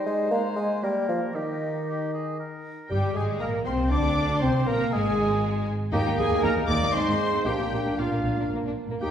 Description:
quick classical-period movement for symphony orchestra; 118 BPM; 3/4; straight; A4 = 439 Hz
clear clarinet; second line; 0.0-9.1 s; Ab3 to D5; -34 LUFS; equal
clear oboe; second line; 0.0-9.1 s; F4 to D5; -34 LUFS; right 1 dB
mellow hollow silver concert flute; second line; 0.0-9.1 s; Eb5 to D6; -36 LUFS; left 1 dB
mellow bassoon; accompaniment; 0.0-9.1 s; Eb3 to D4; -29 LUFS; equal
rich symphonic violin section; melody; 2.9-9.1 s; F5 to D6; -34 LUFS; left 3 dB
warm symphonic violin section; second line; 2.9-9.1 s; G3 to Eb4; -34 LUFS; left 3 dB
rich chamber viola section; accompaniment; 2.9-9.1 s; F4 to D5; -32 LUFS; right 1 dB
mellow French horn section; sustained chords; 2.9-9.1 s; G3 to Eb4; -31 LUFS; equal
rich chamber cello section; bass; 2.9-9.1 s; Eb2 to D3; -30 LUFS; right 1 dB
rich chamber double bass section; bass; 2.9-9.1 s; G1 to Eb2; -30 LUFS; right 1 dB
wet recital hall reverb, RT60 1.4 s; heard from further back in the room; -23 LUFS; side -9 dB against mid
0.0-2.9 A section; 2.9-9.1 B section
0.3 Ab; 0.8 N.C.; 1.3 Eb; 2.9 Bb13; 4.4 Ab; 5.9 Eb; 6.9 Ab; 7.5 Bb

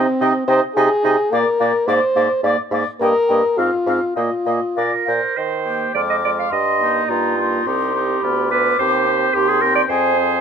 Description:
quick classical-period movement for wind quintet; 106 BPM; 2/4; rubato; Eb major; A4 = 440 Hz
warm oboe; second line; 0.0-10.4 s; Eb4 to F5; -24 LUFS; left 3 dB
bright clarinet; accompaniment; 0.0-10.4 s; Bb3 to F5; -21 LUFS; right 9 dB
warm French horn; accompaniment; 0.0-10.4 s; Ab3 to D5; -20 LUFS; left 1 dB
clear bassoon; bass; 0.0-10.4 s; C2 to Eb3; -23 LUFS; right 3 dB
mellow silver concert flute; melody; 0.2-10.4 s; F5 to D6; -23 LUFS; left 13 dB
light reverb; close, detailed microphones; -15 LUFS; side -7 dB against mid
0.0-5.4 A section; 5.4-10.4 B section
0.0 Cm; 0.8 Ab/C; 1.3 Bb; 1.9 Bb7/Ab; 3.0 Eb/G; 3.6 Fm/Ab; 4.2 Bbsus4; 5.4 Eb; 5.9 Ddim/F; 6.5 Eb/G; 7.7 Cm; 8.2 Bdim/D; 8.8 Cm/Eb; 9.9 Fm

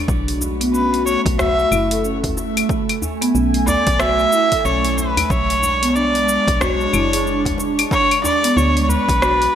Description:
organic downtempo; 92 BPM; 4/4; swing 60% on 16ths; A4 = 439 Hz
warbly tape-like pad; sustained chords; 0.0-9.6 s; G#3 to G#5; -24 LUFS; right 1 dB; chorus, built-in reverb, phaser, sidechain pumping, shimmer reverb
woody FM bass; bass; 0.1-9.5 s; F#1 to D2; -23 LUFS; equal; sidechain pumping
deep house drum kit; drums; 0.1-9.5 s; claves, hi-hat, rim click, shaker; -23 LUFS; left 2 dB; overdrive, gated reverb
electronic kick drum; drums; 0.1-9.2 s; -23 LUFS; equal; overdrive
djembe; percussion; 0.4-9.0 s; -28 LUFS; equal
marimba with soft mallets; arpeggios; 0.6-9.4 s; G#3 to A4; -23 LUFS; equal; ping-pong delay, shimmer reverb
clear kamancheh; melody; 0.7-9.6 s; B4 to E5; -18 LUFS; equal; ping-pong delay, shimmer reverb
moderate plate reverb, RT60 1.6 s, small room ambience; bright 1980s-style digital production; -15 LUFS; side -9 dB against mid
0.0-9.6 A section
0.1 A5; 5.3 Bm69

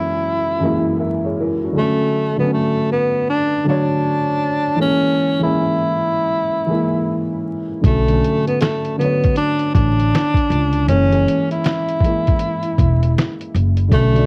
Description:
lo-fi hip hop; 79 BPM; 4/4; swing 63% on 16ths; A4 = 440 Hz
breathy tenor saxophone; melody; 0.0-14.3 s; A3 to E4; -21 LUFS; equal; cassette tape
felt-muted upright piano; accompaniment; 0.0-14.3 s; F#2 to E5; -23 LUFS; equal; cassette tape
upright bass; bass; 7.8-14.3 s; E1 to C#2; -19 LUFS; equal
lo-fi sampler-style drum kit; drums; 7.8-14.3 s; finger snaps, hi-hat, kick drum, snare drum; -20 LUFS; equal; cassette tape
moderate small room reverb, RT60 0.5 s; home recording on cassette, vinyl crackle; -18 LUFS; mono
0.0-14.3 A section
0.0 F#7; 1.8 Dmaj7; 4.8 A#m7b5/E; 7.8 Bm7 (rootless); 10.9 F#7

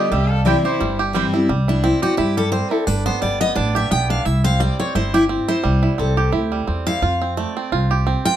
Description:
bluegrass; 174 BPM; 4/4; swing 55% on 8ths; C major; A4 = 440 Hz
lap resonator guitar; melody; 0.0-1.0 s; C5 to F5; -22 LUFS; equal
clear fiddle; second line; 0.0-1.0 s; E4 to A4; -28 LUFS; left 3 dB
picked steel-string acoustic guitar; accompaniment; 0.0-8.4 s; G2 to G5; -21 LUFS; left 2 dB
bluegrass banjo; arpeggios; 0.0-8.4 s; G3 to G4; -23 LUFS; right 6 dB
upright bass; bass; 0.1-8.1 s; G1 to G2; -20 LUFS; equal
mandolin; stabs; 0.5-1.3 s; C4 to G5; -24 LUFS; right 8 dB
moderate small room reverb, RT60 0.6 s; -16 LUFS; side -11 dB against mid
0.0-1.5 A section; 1.5-8.4 B section
steel-string acoustic guitar solo 1.5-8.4
0.1 C; 2.9 G; 4.3 C; 7.0 F

